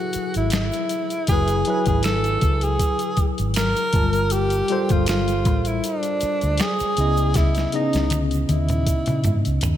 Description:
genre	R&B, neo-soul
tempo	79 BPM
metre	4/4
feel	swing 55% on 16ths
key	unclear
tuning	A4 = 438 Hz
part	breathy tenor saxophone	melody	0.0-9.6 s	D4 to A#4	-24 LUFS	right 1 dB	slapback echo
part	tine electric piano	accompaniment	0.0-9.8 s	C#3 to A5	-25 LUFS	left 2 dB	medium stereo tremolo, slapback echo
part	boom bap sampler-style drum kit	drums	0.1-9.8 s	hi-hat, kick drum, snare drum, toms	-24 LUFS	equal	none
part	egg shaker and finger snaps	percussion	0.1-9.8 s	none	-35 LUFS	right 6 dB	none
part	vintage muted fingered electric bass	bass	0.2-9.8 s	F#1 to C#3	-23 LUFS	equal	none
room	light reverb, studio ambience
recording	none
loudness	-18 LUFS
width	side -11 dB against mid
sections	0.0-9.8 A section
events	drum fill 7.4-9.8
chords	0.0 F#m9; 3.9 Gm9; 7.0 C#m9

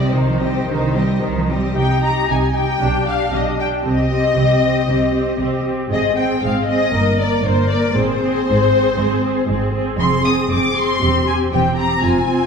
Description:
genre	quick classical-period movement for string orchestra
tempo	117 BPM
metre	4/4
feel	rubato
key	C minor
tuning	A4 = 440 Hz
part	warm studio violin section	melody	0.0-12.5 s	C5 to Eb6	-21 LUFS	left 5 dB	none
part	rich studio violin section	second line	0.0-12.5 s	Eb4 to Eb6	-24 LUFS	left 1 dB	none
part	warm studio viola section	accompaniment	0.0-12.5 s	Eb3 to Bb4	-20 LUFS	equal	none
part	clear studio cello section	bass	0.0-12.5 s	E2 to G3	-22 LUFS	right 2 dB	none
part	warm studio double bass section	bass	0.0-12.5 s	E1 to C2	-23 LUFS	right 2 dB	none
room	wet recital hall reverb, RT60 1.6 s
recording	heard from further back in the room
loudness	-15 LUFS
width	side -6 dB against mid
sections	0.0-1.8 A section; 1.8-12.5 B section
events	none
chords	0.0 Cm; 2.8 G/B; 3.8 Cm; 5.9 Ab; 6.9 Gmadd11; 8.0 Ab; 10.0 Fm; 11.0 C/E

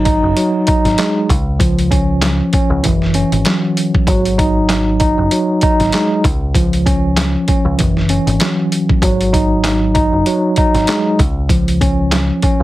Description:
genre	hip hop, boom-bap hip-hop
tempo	97 BPM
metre	4/4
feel	swing 57% on 16ths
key	unclear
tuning	A4 = 438 Hz
part	tine electric piano	accompaniment	0.0-12.6 s	E3 to D#4	-14 LUFS	equal	medium stereo tremolo, cassette tape, high-pass filter, low-pass filter
part	deep dub picked electric bass	bass	0.0-12.6 s	F#1 to C#2	-18 LUFS	equal	none
part	boom bap sampler-style drum kit	drums	0.1-12.6 s	handclaps, hi-hat, kick drum, snare drum	-16 LUFS	equal	none
room	little or no reverb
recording	heavily compressed radio sound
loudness	-12 LUFS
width	side -16 dB against mid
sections	0.0-12.6 A section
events	none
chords	0.0 G#5; 1.3 C#; 2.8 F#5; 4.1 G#5; 6.2 C#; 7.8 F#5; 9.0 G#5; 11.2 C#

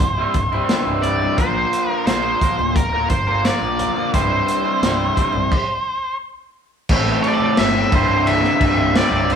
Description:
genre	psychedelic rock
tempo	87 BPM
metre	4/4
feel	straight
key	C mixolydian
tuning	A4 = 440 Hz
part	octave-fuzz lead guitar	melody	0.0-9.4 s	Bb4 to E5	-21 LUFS	right 1 dB	distortion
part	fuzz picked electric bass	bass	0.0-9.4 s	C1 to Bb1	-25 LUFS	equal	overdrive
part	crunchy breakbeat drum kit	drums	0.0-9.4 s	crash cymbal, hi-hat, kick drum, snare drum	-21 LUFS	equal	none
part	raw garage guitar	riff	0.2-9.4 s	C2 to Bb4	-20 LUFS	equal	overdrive
part	congas	percussion	0.4-9.4 s	none	-35 LUFS	left 1 dB	none
room	moderate large studio reverb, RT60 1.1 s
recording	band playing live in one room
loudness	-16 LUFS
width	side -7 dB against mid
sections	0.0-6.9 A section; 6.9-9.4 B section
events	stop 5.5-6.9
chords	0.0 C; 1.4 Bbsus2; 4.1 C; 6.9 Am; 7.9 C7

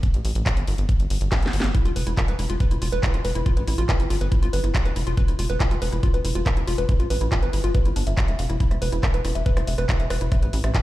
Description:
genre	psychedelic trance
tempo	140 BPM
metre	4/4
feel	straight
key	E phrygian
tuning	A4 = 440 Hz
part	drum and bass drum kit	drums	0.0-10.8 s	handclaps, hi-hat, rim click, snare drum	-30 LUFS	equal	none
part	electronic kick drum	drums	0.0-10.8 s	none	-21 LUFS	equal	none
part	tight sequencer bass	bass	0.1-10.7 s	E1 to A1	-23 LUFS	equal	none
part	woody wave-folded pluck	riff	1.7-10.8 s	D4 to F5	-29 LUFS	moving between left 5 dB and right 3 dB	chorus, auto-pan, sidechain pumping, digital delay
room	digital ambience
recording	played on a big sound system in a bare room, large studio reverb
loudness	-20 LUFS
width	side -16 dB against mid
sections	0.0-10.8 A section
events	drum fill 1.3-1.7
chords	0.0 E5

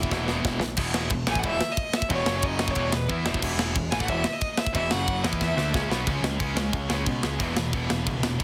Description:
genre	punk rock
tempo	181 BPM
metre	4/4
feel	straight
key	E major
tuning	A4 = 440 Hz
part	rich fiddle	melody	0.0-5.9 s	B4 to G#5	-32 LUFS	equal	none
part	distorted electric guitar	riff	0.0-8.4 s	E2 to E4	-36 LUFS	equal	distortion
part	distorted electric guitar	riff	0.0-8.4 s	E2 to E4	-36 LUFS	equal	overdrive
part	tight distorted guitar	riff	0.0-8.4 s	E2 to E4	-35 LUFS	equal	distortion
part	growling picked electric bass	bass	0.0-8.4 s	E1 to B2	-32 LUFS	equal	overdrive
part	tight metal drum kit	drums	0.0-8.4 s	crash cymbal, kick drum, ride cymbal, snare drum	-30 LUFS	equal	none
room	little or no reverb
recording	heavily compressed radio sound, multiband compression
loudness	-26 LUFS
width	mono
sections	0.8-6.1 A section; 6.1-8.4 B section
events	drum fill 0.1-0.8, 5.4-6.1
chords	0.0 E5; 2.3 F#5; 2.8 E5; 4.9 F#5; 5.2 E; 6.1 C#5; 7.4 E5

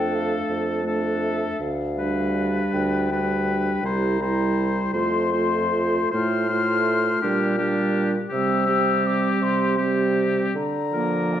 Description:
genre	classical, slow romantic movement for wind quintet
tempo	54 BPM (dotted quarters)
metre	6/8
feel	uneven beats, rubato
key	F major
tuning	A4 = 440 Hz
part	mellow concert flute	melody	0.0-11.4 s	D5 to F6	-27 LUFS	left 7 dB	none
part	bright oboe	second line	0.0-11.4 s	G4 to C5	-29 LUFS	left 4 dB	none
part	clear clarinet	accompaniment	0.0-11.4 s	Bb3 to F4	-28 LUFS	right 5 dB	none
part	mellow French horn	accompaniment	0.0-11.4 s	F3 to A3	-26 LUFS	equal	none
part	warm bassoon	bass	0.0-11.4 s	C2 to D3	-25 LUFS	right 2 dB	none
room	moderate recital hall reverb, RT60 1.3 s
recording	dark, warm production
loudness	-20 LUFS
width	side -10 dB against mid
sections	0.0-11.4 A section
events	none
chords	0.0 Dm/F; 1.6 G7/D; 3.8 C; 4.9 F; 6.1 F/A; 7.2 Gm7/Bb; 8.3 C; 10.5 Bb/D

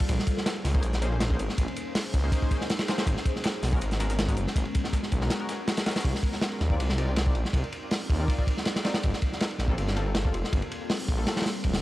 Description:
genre	drum and bass, jungle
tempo	161 BPM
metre	4/4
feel	swing 53% on 16ths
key	C minor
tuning	A4 = 440 Hz
part	filtered dub chord stab	stabs	0.0-11.4 s	G3 to D5	-37 LUFS	left 2 dB	chorus, dub echo
part	breakbeat sampler-style drum kit	drums	0.0-6.0 s	hi-hat, snare drum	-41 LUFS	left 1 dB	high-pass filter on snare, high-pass filter on hats
part	crunchy breakbeat drum kit	drums	0.0-11.8 s	hi-hat, kick drum, ride cymbal, snare drum	-27 LUFS	equal	none
part	detuned saw bass	bass	0.1-11.8 s	D1 to Eb2	-28 LUFS	equal	tube saturation
room	studio reverb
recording	dry, gritty hardware recording, transformer saturation, vinyl crackle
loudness	-25 LUFS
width	side -16 dB against mid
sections	0.0-6.0 A section; 6.0-11.8 A section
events	drop 0.0-6.0, 6.0-11.8; kick drops out 5.3-6.0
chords	0.1 Bbm11; 3.1 Abm11; 6.0 Cm11; 9.0 Gm11

